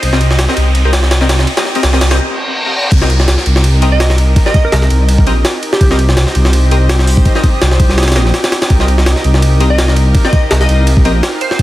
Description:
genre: drum and bass, jungle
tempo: 166 BPM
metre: 4/4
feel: swing 55% on 16ths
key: C minor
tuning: A4 = 440 Hz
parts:
  - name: glassy wavetable pluck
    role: melody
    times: 0.0-0.4, 3.9-6.0, 9.7-11.6 s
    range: G4 to Eb5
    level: -21 LUFS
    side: right 1 dB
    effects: chorus, cassette tape, dub echo
  - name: rich chamber string section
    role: sustained chords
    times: 0.0-11.6 s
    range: C4 to Eb5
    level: -23 LUFS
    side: left 1 dB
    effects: vintage 12-bit sampler grit
  - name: dark detuned saw bass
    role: bass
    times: 0.0-11.6 s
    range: Bb1 to C2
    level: -10 LUFS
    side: equal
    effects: none
  - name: jungle sampler-style drum kit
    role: drums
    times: 0.0-11.6 s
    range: crash cymbal, hi-hat, kick drum, ride cymbal, snare drum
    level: -13 LUFS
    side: equal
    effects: overdrive, high-pass filter on snare, high-pass filter on cymbals, high-pass filter on kick, high-pass filter on hats
  - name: riser, reverse cymbal and downlifter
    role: sound effects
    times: 0.0-5.8 s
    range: none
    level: -21 LUFS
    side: equal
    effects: none
  - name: orchestra-hit-like synth stab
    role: stabs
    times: 0.1-11.1 s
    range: C4 to Eb5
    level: -20 LUFS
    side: left 1 dB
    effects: built-in reverb, dub echo
  - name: backwards swelling texture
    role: texture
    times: 3.8-11.6 s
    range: Eb4 to F5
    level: -26 LUFS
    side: equal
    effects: built-in reverb
room: light reverb, digital ambience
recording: dense, heavily limited modern master, vinyl crackle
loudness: -9 LUFS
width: side -16 dB against mid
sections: 0.0-2.9 A section; 2.9-11.6 B section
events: build-up 0.0-2.9; riser 0.0-2.2; break 2.2-2.9; reverse cymbal 2.2-2.9; drop 2.9-11.6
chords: 0.0 Cm7

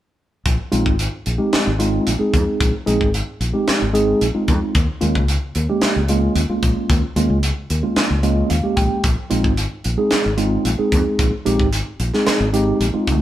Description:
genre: electric jazz fusion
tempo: 112 BPM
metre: 4/4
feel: straight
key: unclear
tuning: A4 = 440 Hz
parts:
  - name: fingered electric bass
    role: bass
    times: 0.5-13.2 s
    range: Ab1 to F2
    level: -21 LUFS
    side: equal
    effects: none
  - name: tight funk drum kit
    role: drums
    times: 0.5-13.2 s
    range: hi-hat, kick drum, snare drum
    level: -20 LUFS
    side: equal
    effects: none
  - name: mellow tine electric piano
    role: accompaniment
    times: 0.7-13.2 s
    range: Ab3 to G5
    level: -19 LUFS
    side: right 1 dB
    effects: medium stereo tremolo
room: moderate stone room reverb, RT60 1.3 s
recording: band playing live in one room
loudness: -16 LUFS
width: side -13 dB against mid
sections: 0.5-13.2 A section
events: tine electric piano fill 8.0-9.0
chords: 0.5 Bb9sus4; 4.8 Eb9sus4; 9.0 Bb9sus4

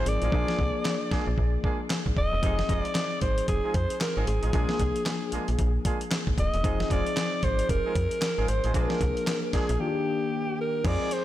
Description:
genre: R&B, new jack swing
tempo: 114 BPM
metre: 4/4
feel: swing 61% on 16ths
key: unclear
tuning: A4 = 444 Hz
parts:
  - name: raspy alto saxophone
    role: melody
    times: 0.0-11.2 s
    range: G4 to Eb5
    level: -30 LUFS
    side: equal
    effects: slapback echo, ping-pong delay
  - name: tine electric piano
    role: accompaniment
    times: 0.0-11.2 s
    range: Eb3 to Ab4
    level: -32 LUFS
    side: left 4 dB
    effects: phaser
  - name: mellow horn section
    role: stabs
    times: 0.0-11.1 s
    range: Ab3 to Ab4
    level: -37 LUFS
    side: right 3 dB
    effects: slapback echo, ping-pong delay
  - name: slap-like FM bass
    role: bass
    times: 0.0-11.0 s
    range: Eb1 to F2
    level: -28 LUFS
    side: equal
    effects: none
  - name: dusty soul sampler-style drum kit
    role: drums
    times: 0.1-11.2 s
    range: crash cymbal, handclaps, hi-hat, kick drum, snare drum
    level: -29 LUFS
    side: equal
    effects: none
room: light reverb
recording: none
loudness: -24 LUFS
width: side -13 dB against mid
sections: 0.0-10.8 A section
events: hi-hats muted 0.3-2.4; silent gap 9.8-10.8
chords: 0.3 Bb7; 2.4 Fm7; 4.5 Bb7; 6.6 Fm7; 8.7 Bb7; 9.8 Ebmaj7

